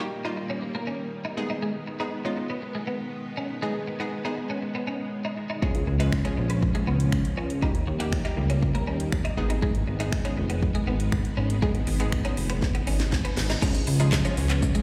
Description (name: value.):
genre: dance-pop.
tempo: 120 BPM.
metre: 4/4.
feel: straight.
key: G# dorian.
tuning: A4 = 440 Hz.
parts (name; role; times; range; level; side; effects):
hollow square pluck; accompaniment; 0.0-14.8 s; E#3 to B4; -36 LUFS; equal; chorus, sidechain pumping, plate reverb, slapback echo.
string machine, full ensemble; sustained chords; 0.0-14.8 s; D#3 to C#4; -36 LUFS; equal; ensemble chorus, sidechain pumping.
twelve-string electric guitar; riff; 0.0-14.8 s; G#3 to F#4; -35 LUFS; equal; ensemble chorus, slapback echo.
house drum kit; drums; 5.6-14.8 s; crash cymbal, finger snaps, handclaps, hi-hat, kick drum, shaker, snare drum; -29 LUFS; equal; none.
chorused synth bass; bass; 5.7-14.7 s; E#1 to D#2; -28 LUFS; equal; sidechain pumping.
reverse cymbal; sound effects; 12.9-13.6 s; none; -41 LUFS; equal; slapback echo.
room: light reverb.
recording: live gig heard through the venue's PA, recital hall reverb.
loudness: -27 LUFS.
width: mono.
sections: 0.0-13.6 A section; 13.6-14.8 B section.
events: drum fill 12.6-13.6; reverse cymbal 12.9-13.6.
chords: 0.0 D#; 1.4 G#m; 5.6 C#; 7.6 D#; 9.4 G#m; 13.6 C#.